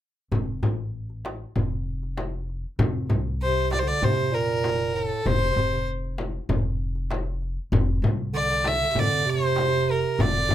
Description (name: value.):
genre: Arabic maqam ensemble.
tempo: 97 BPM.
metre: 4/4.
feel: straight.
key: F maqam ajam.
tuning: A4 = 440 Hz.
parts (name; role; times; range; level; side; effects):
upright bass; bass; 0.3-10.5 s; F1 to C2; -29 LUFS; equal; none.
darbuka; percussion; 0.3-10.5 s; none; -30 LUFS; right 2 dB; none.
frame drum; percussion; 0.3-10.5 s; none; -28 LUFS; left 3 dB; none.
clear violin; melody; 3.4-10.5 s; A4 to E5; -24 LUFS; left 1 dB; none.
warm bass clarinet; second line; 3.4-10.5 s; A2 to D3; -28 LUFS; right 6 dB; none.
room: light reverb.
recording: none.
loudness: -22 LUFS.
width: side -12 dB against mid.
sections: 0.3-2.8 A section; 2.8-10.5 B section.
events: none.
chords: none.